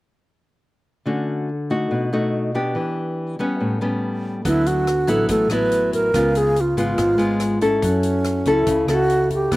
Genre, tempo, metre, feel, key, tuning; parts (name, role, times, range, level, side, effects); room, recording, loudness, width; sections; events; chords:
bossa nova; 142 BPM; 4/4; straight; D major; A4 = 439 Hz
nylon-string guitar; accompaniment; 1.1-9.6 s; G#2 to A4; -20 LUFS; left 1 dB
reedy wooden-headed alto flute; melody; 4.5-9.6 s; C#4 to B4; -19 LUFS; right 1 dB; slapback echo
hollow-body short-scale fingered electric bass; bass; 4.5-9.6 s; G#1 to F#2; -26 LUFS; equal
swinging big-band drum kit; drums; 4.5-9.6 s; hi-hat, kick drum, rim click; -32 LUFS; equal
little or no reverb; recorded outdoors, with no room sound; -18 LUFS; side -18 dB against mid
1.1-4.4 A section; 4.4-9.6 B section
1.1 Dmaj7; 1.9 B7; 2.8 Em7; 3.6 A9; 4.4 D69; 6.1 C#7; 7.8 F#m7